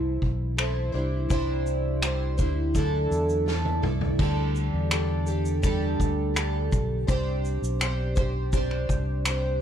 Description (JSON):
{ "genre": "acoustic pop", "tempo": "83 BPM", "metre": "4/4", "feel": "straight", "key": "unclear", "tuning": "A4 = 438 Hz", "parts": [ { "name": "picked plugged-in twelve-string acoustic guitar", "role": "accompaniment", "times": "0.0-9.6 s", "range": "C3 to C5", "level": "-28 LUFS", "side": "right 1 dB", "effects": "double-tracked left and right" }, { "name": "fingered electric bass", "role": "bass", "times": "0.0-9.6 s", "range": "B1 to E2", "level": "-27 LUFS", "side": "equal", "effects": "none" }, { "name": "loose indie drum kit", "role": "drums", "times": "0.2-9.4 s", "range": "crash cymbal, finger snaps, kick drum, shaker, snare drum, toms", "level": "-28 LUFS", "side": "equal", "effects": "none" } ], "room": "little or no reverb", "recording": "none", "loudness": "-23 LUFS", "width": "side -9 dB against mid", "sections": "0.0-4.2 A section; 4.2-9.6 B section", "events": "drum fill 3.5-4.2", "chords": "0.0 Am; 0.9 Cadd9; 2.8 Dadd9; 4.2 Dsus4; 7.1 Csus2" }